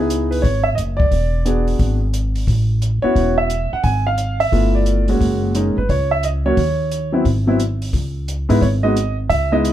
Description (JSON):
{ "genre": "jazz piano trio", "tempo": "176 BPM", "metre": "4/4", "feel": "swing 65% on 8ths", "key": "C# minor", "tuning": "A4 = 440 Hz", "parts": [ { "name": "clear upright piano", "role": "melody", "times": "0.0-9.7 s", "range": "F#3 to Ab5", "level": "-18 LUFS", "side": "right 1 dB", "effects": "plate reverb" }, { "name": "upright bass", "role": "bass", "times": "0.0-9.7 s", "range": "E1 to G#2", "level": "-19 LUFS", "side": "equal", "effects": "none" }, { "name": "compact cocktail drum kit", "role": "drums", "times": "0.1-9.7 s", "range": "hi-hat, kick drum", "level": "-23 LUFS", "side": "left 1 dB", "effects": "none" } ], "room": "little or no reverb", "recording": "dark, warm production", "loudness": "-15 LUFS", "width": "side -12 dB against mid", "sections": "0.0-9.7 A section", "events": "none", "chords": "0.0 C#m9; 1.1 E7; 2.5 A6; 3.8 Fm/Ab; 4.5 G13; 5.2 F#; 6.6 D#7(no3); 7.3 N.C.; 7.9 C#m9", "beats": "0.09 0.43 0.78 | 1.12 1.46 1.80 2.14 | 2.48 2.82 3.16 3.50 | 3.84 4.18 4.52 4.87 | 5.21 5.55 5.89 6.23 | 6.57 6.91 7.25 7.59 | 7.93 8.28 8.62 8.96 | 9.30 9.64" }